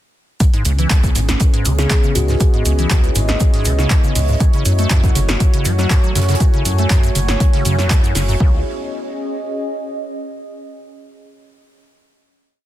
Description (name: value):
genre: acid house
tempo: 120 BPM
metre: 4/4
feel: straight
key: C# minor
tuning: A4 = 440 Hz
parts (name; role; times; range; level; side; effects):
- warm analog pad; sustained chords; 0.4-8.6 s; A3 to C#5; -28 LUFS; left 1 dB; chorus, sidechain pumping
- acid bass, square; riff; 0.4-8.6 s; B1 to A3; -22 LUFS; equal; tube saturation, ensemble chorus, sidechain pumping, dub echo
- damped 70s drum kit; drums; 0.4-8.3 s; hi-hat, snare drum; -33 LUFS; right 5 dB; none
- electronic kick drum; drums; 0.4-8.5 s; none; -14 LUFS; equal; none
- punchy analog drum machine; drums; 0.4-8.3 s; handclaps, hi-hat, snare drum; -23 LUFS; right 1 dB; none
- maracas; percussion; 0.4-8.4 s; none; -28 LUFS; right 1 dB; none
- warbly tape-like pad; texture; 0.8-10.4 s; C#4 to G#5; -26 LUFS; equal; chorus, built-in reverb, sidechain pumping
- round analog bass; bass; 0.7-8.6 s; F#1 to F#2; -17 LUFS; equal; sidechain pumping
- kalimba; melody; 1.8-2.7 s; F#4 to G#4; -26 LUFS; equal; dub echo
room: studio reverb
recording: dense, heavily limited modern master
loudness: -13 LUFS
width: side -13 dB against mid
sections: 0.4-8.4 drop; 8.4-10.4 final chord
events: drop 0.4-8.4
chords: 0.4 C#m7; 4.4 F#m7; 8.4 C#m7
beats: | 0.40 0.90 1.40 1.90 | 2.40 2.90 3.40 3.90 | 4.40 4.90 5.40 5.90 | 6.40 6.90 7.40 7.90 | 8.40 8.90 9.40 9.90